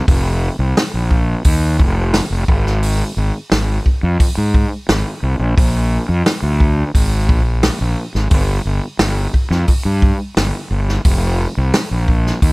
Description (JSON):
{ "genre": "psychedelic rock", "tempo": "88 BPM", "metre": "4/4", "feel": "straight", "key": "unclear", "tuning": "A4 = 441 Hz", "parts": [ { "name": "fuzz fingered electric bass", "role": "bass", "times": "0.1-12.5 s", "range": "F1 to Ab2", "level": "-16 LUFS", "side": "equal", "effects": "overdrive" }, { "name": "vintage drum kit", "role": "drums", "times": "0.1-12.5 s", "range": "hi-hat, kick drum, snare drum", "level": "-16 LUFS", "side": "equal", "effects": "none" } ], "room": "little or no reverb", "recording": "none", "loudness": "-14 LUFS", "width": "side -26 dB against mid", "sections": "0.0-12.5 A section", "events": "none", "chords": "none" }